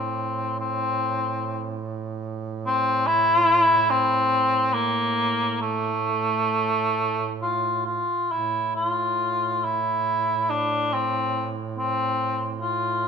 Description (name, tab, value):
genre	caucasian folk, Caucasian lament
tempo	66-74 BPM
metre	3/4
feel	rubato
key	A phrygian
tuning	A4 = 441 Hz
part	mellow cor anglais	melody	0.0-13.1 s	A3 to F4	-22 LUFS	left 1 dB	none
part	warm duduk	drone	0.0-13.1 s	A2	-32 LUFS	right 6 dB	none
room	moderate recital hall reverb, RT60 1.8 s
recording	minimal, uncompressed stereo recording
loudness	-21 LUFS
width	side -6 dB against mid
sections	0.0-8.3 A section; 8.3-13.1 B section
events	none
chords	none